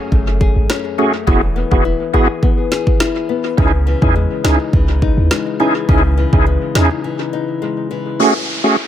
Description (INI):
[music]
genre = dancehall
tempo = 104 BPM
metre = 4/4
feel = straight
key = C# minor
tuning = A4 = 440 Hz
[part]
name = nylon-string guitar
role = arpeggios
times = 0.0-8.8 s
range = F#2 to G#4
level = -20 LUFS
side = left 6 dB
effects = dub echo
[part]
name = clean 808-style bass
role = bass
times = 0.1-6.9 s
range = E1 to E2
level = -15 LUFS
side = equal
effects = none
[part]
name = afro-pop drum kit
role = drums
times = 0.1-6.9 s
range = kick drum, rim click, snare drum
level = -17 LUFS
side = equal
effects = dub echo
[part]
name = bright tonewheel organ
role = accompaniment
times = 1.0-8.8 s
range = A3 to G#4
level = -17 LUFS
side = right 2 dB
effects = overdrive, chorus vibrato, fast rotary speaker
[part]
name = downlifter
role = sound effects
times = 8.2-8.9 s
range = none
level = -21 LUFS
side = equal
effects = none
[sound]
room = light reverb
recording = echo-heavy mix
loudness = -13 LUFS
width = side -10 dB against mid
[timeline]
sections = 0.0-8.2 A section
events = break 7.0-8.2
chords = 0.0 F#madd9; 1.3 Eadd9; 3.6 C#madd9; 8.2 F#madd9